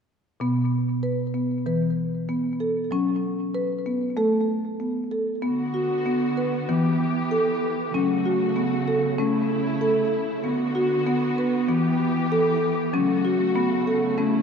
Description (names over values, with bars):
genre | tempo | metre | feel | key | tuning
world meditative, meditative tuned percussion | 96 BPM | 4/4 | straight | B minor | A4 = 440 Hz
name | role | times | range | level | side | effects
marimba with medium mallets | arpeggios | 0.4-14.4 s | B2 to B4 | -22 LUFS | left 1 dB | ping-pong delay
muted studio string section | sustained chords | 5.4-14.4 s | C#3 to G4 | -27 LUFS | right 3 dB | none
room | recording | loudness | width
wet concert hall reverb, RT60 2.0 s | dark, warm production | -21 LUFS | side -6 dB against mid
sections
0.4-5.4 A section; 5.4-14.4 B section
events
none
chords
0.4 N.C.; 1.7 E5; 2.9 F#5; 4.2 Asus2; 5.4 Bm; 6.7 Em; 7.9 F#m; 9.2 A; 10.4 Bm; 11.7 Em; 12.9 F#m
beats
| 0.41 1.04 1.67 2.30 | 2.93 3.56 4.18 4.81 | 5.44 6.07 6.69 7.32 | 7.95 8.57 9.20 9.82 | 10.45 11.07 11.70 12.32 | 12.94 13.57 14.19